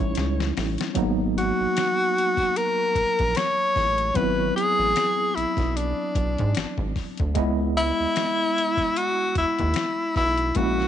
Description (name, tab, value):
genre	R&B, neo-soul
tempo	75 BPM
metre	4/4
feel	swing 57% on 16ths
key	unclear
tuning	A4 = 440 Hz
part	breathy tenor saxophone	melody	0.0-10.9 s	D4 to C#5	-22 LUFS	left 1 dB	none
part	tine electric piano	accompaniment	0.0-10.9 s	F#3 to D#5	-28 LUFS	right 2 dB	overdrive, fast stereo tremolo
part	rubbery square bass	bass	0.0-10.9 s	G#1 to G#2	-26 LUFS	right 1 dB	transformer saturation
part	dusty soul sampler-style drum kit	drums	0.0-10.9 s	hi-hat, kick drum, snare drum	-30 LUFS	left 3 dB	none
room	little or no reverb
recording	1960s-style stereo, nothing above 10.5 kHz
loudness	-21 LUFS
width	side -10 dB against mid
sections	0.0-10.9 A section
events	drum fill 0.2-1.0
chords	0.0 A7#11; 1.0 G#m9; 4.2 G#7alt; 7.4 C#m9